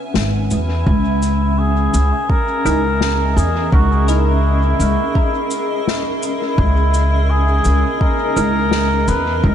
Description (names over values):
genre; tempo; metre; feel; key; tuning
ambient dub; 84 BPM; 4/4; straight; C# dorian; A4 = 440 Hz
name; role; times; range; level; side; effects
granular cloud pad; sustained chords; 0.0-9.5 s; C#4 to G#5; -23 LUFS; left 1 dB; built-in reverb
snare drum and cabasa; drums; 0.1-9.2 s; none; -25 LUFS; left 7 dB; dub echo
upright bass; bass; 0.2-9.5 s; G#1 to E2; -15 LUFS; equal; none
trumpet with cup mute; melody; 0.5-9.5 s; E4 to B4; -20 LUFS; equal; dub echo
electronic kick drum; drums; 0.9-9.5 s; none; -16 LUFS; equal; overdrive
filtered dub chord stab; stabs; 2.7-8.5 s; D#4 to A#4; -27 LUFS; right 2 dB; phaser, analog chorus, dub echo
room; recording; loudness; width
light reverb, studio reverb; nothing above 10.8 kHz; -14 LUFS; side -9 dB against mid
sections
0.9-9.5 A section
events
none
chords
0.0 Eadd9; 0.9 C#m69